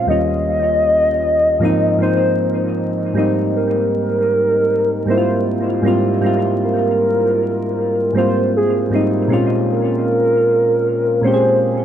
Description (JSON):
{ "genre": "lo-fi hip hop", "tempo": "78 BPM", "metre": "4/4", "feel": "swing 59% on 16ths", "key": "Ab major", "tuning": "A4 = 440 Hz", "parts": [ { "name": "warbly nostalgic lead", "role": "melody", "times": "0.0-11.6 s", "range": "Ab4 to Eb5", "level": "-17 LUFS", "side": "equal", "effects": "chorus, low-pass filter, dub echo" }, { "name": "soft electric-piano-like synth keys", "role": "accompaniment", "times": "0.0-11.8 s", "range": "Eb2 to Ab4", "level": "-17 LUFS", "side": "equal", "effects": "chorus, low-pass filter, dub echo" } ], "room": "moderate plate reverb, RT60 3.1 s", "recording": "echo-heavy mix, vinyl crackle, nothing above 10.7 kHz", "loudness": "-14 LUFS", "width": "side -10 dB against mid", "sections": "0.0-3.2 A section; 3.2-11.8 B section", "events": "none", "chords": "0.1 Eb9; 1.6 Ab6; 3.2 Abmaj9; 9.3 Bbm7", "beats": "| 0.08 0.85 1.62 2.39 | 3.15 3.92 4.69 5.46 | 6.23 7.00 7.77 8.54 | 9.31 10.08 10.85 11.62" }